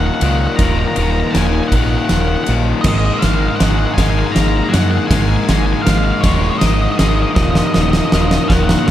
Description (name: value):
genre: post-rock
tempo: 53 BPM (dotted quarters)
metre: 6/8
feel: straight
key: Eb minor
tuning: A4 = 440 Hz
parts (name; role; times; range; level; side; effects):
- octave-fuzz lead guitar; melody; 0.0-8.9 s; Db5 to Bb5; -22 LUFS; equal; distortion, tape echo
- clear studio string section; sustained chords; 0.0-8.9 s; Eb3 to Bb4; -28 LUFS; right 4 dB; none
- twelve-string electric guitar; arpeggios; 0.0-8.9 s; Eb2 to Eb4; -24 LUFS; left 1 dB; tape echo
- raw garage guitar; riff; 0.0-8.9 s; Eb2 to Ab3; -19 LUFS; left 5 dB; overdrive
- growling fingered electric bass; bass; 0.0-8.9 s; Eb1 to Gb2; -17 LUFS; equal; overdrive
- huge arena drum kit; drums; 0.2-8.9 s; crash cymbal, kick drum, ride cymbal, snare drum; -17 LUFS; right 1 dB; none
room: studio reverb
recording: dark, warm production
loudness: -12 LUFS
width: side -12 dB against mid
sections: 0.0-8.9 A section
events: build-up 0.0-8.9; drum fill 0.0-8.9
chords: 0.0 Ebm; 2.9 Absus2; 7.4 Ebm